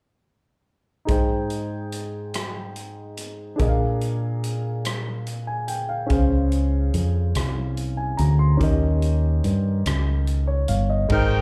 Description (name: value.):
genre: slow gospel.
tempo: 48 BPM (dotted quarters).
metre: 6/8.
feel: straight.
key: Ab major.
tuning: A4 = 440 Hz.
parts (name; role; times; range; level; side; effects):
warm grand piano; accompaniment; 1.1-11.4 s; Ab2 to C6; -29 LUFS; equal; none.
swinging big-band drum kit; drums; 1.1-11.3 s; crash cymbal, hi-hat, kick drum, rim click; -29 LUFS; equal; none.
fingered electric bass; bass; 6.1-11.4 s; G1 to G2; -23 LUFS; equal; none.
bright saxophone section; melody; 11.1-11.4 s; Eb4 to G5; -26 LUFS; equal; none.
warm alto saxophone; melody; 11.1-11.4 s; Bb4; -30 LUFS; equal; none.
room: little or no reverb.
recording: live gig heard through the venue's PA, club reverb.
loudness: -23 LUFS.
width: mono.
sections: 1.1-11.1 A section.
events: none.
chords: 1.1 Abmaj7; 3.6 Bb7; 6.1 Dbmaj7; 8.6 Eb7.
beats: | 1.08 2.34 | 3.60 4.85 | 6.10 7.36 | 8.61 9.85 | 11.10.